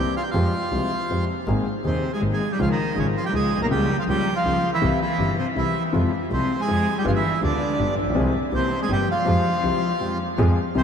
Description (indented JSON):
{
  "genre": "tango",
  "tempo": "161 BPM",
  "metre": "3/4",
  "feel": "rubato",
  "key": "F minor",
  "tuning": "A4 = 438 Hz",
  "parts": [
    { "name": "bandoneon", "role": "melody", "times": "0.0-10.8 s", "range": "C4 to Bb5", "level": "-25 LUFS", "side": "right 2 dB", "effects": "analog delay" },
    { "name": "dark concert grand piano", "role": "accompaniment", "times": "0.0-10.8 s", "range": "Eb1 to Ab4", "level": "-25 LUFS", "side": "left 3 dB", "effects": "none" },
    { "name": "clear double bass", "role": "bass", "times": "0.0-10.8 s", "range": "G1 to F2", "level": "-26 LUFS", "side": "right 2 dB", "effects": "none" },
    { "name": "warm cello", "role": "second line", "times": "1.9-10.8 s", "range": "C3 to Bb3", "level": "-26 LUFS", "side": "left 2 dB", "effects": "analog delay" }
  ],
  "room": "wet huge ambient reverb, RT60 8.1 s",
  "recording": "dreamy mix soaked in reverb",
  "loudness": "-20 LUFS",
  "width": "side -7 dB against mid",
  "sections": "0.0-10.4 A section",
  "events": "break 10.0-10.4",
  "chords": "0.3 Fmadd9; 1.5 Abadd9; 2.6 Db; 3.7 Bbm/Db; 4.8 C; 5.9 Fm; 7.1 G7; 8.2 Fm/C; 8.5 C7; 9.3 Fmadd9"
}